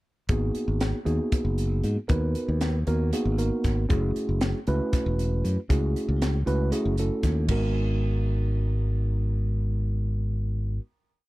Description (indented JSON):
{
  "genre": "electric jazz fusion",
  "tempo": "234 BPM (eighths)",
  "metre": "7/8",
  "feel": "straight",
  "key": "G# minor",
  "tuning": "A4 = 440 Hz",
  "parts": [
    { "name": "mellow tine electric piano", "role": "accompaniment", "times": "0.3-10.8 s", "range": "G#3 to B4", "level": "-29 LUFS", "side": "right 1 dB", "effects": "none" },
    { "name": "modern bright fingered electric bass", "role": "bass", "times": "0.3-10.8 s", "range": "E1 to G#2", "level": "-25 LUFS", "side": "equal", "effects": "none" },
    { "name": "crisp fusion drum kit", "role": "drums", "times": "0.3-7.6 s", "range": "crash cymbal, hi-hat, kick drum, snare drum", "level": "-29 LUFS", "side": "equal", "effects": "none" }
  ],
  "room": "little or no reverb",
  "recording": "none",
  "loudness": "-23 LUFS",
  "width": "side -19 dB against mid",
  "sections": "0.3-7.5 groove; 7.5-11.1 final chord",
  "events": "none",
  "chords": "0.3 G#m9; 3.9 F#m9; 7.5 G#m9"
}